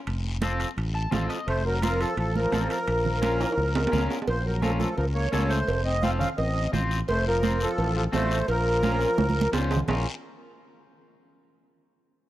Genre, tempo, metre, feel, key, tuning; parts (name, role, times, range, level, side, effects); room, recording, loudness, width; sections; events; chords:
latin, cumbia; 171 BPM; 4/4; straight; Bb harmonic minor; A4 = 440 Hz
fingered electric bass; bass; 0.1-10.0 s; F1 to Db2; -27 LUFS; equal
guiro; percussion; 0.1-10.0 s; -41 LUFS; left 5 dB
timbales and cowbell; percussion; 0.1-10.0 s; -32 LUFS; right 4 dB
congas; percussion; 0.2-10.0 s; -30 LUFS; right 4 dB
electric guitar at the edge of break-up; accompaniment; 0.4-10.1 s; C4 to A5; -32 LUFS; left 1 dB
accordion; melody; 1.5-9.5 s; A4 to F5; -28 LUFS; right 1 dB; light tremolo tuning, slapback echo
bright trombone; second line; 1.5-9.5 s; F3 to Db4; -33 LUFS; left 2 dB
small room reverb; dry, close 1970s-style studio recording; -23 LUFS; side -14 dB against mid
0.0-4.3 A section; 4.3-9.9 B section; 9.9-11.3 C section
clean electric guitar fill 0.8-1.5; drum fill 3.4-4.3, 9.2-9.9
0.1 F; 2.9 Bbm; 5.7 F; 8.5 Bbm